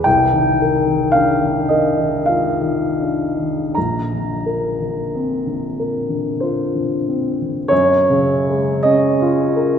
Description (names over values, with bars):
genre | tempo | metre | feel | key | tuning
classical, impressionist solo piano | 39-58 BPM | 3/4 | rubato | Bb major | A4 = 438 Hz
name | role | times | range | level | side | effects
warm baby grand piano | solo | 0.0-9.8 s | Bb1 to Bb5 | -15 LUFS | equal | none
room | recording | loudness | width
wet cathedral reverb, RT60 4.7 s | recorded in a church or concert hall | -15 LUFS | side -8 dB against mid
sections
0.0-7.7 A section; 7.7-9.8 B section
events
none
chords
0.1 Cm11; 3.8 Bbadd9; 7.7 Gbmaj7sus2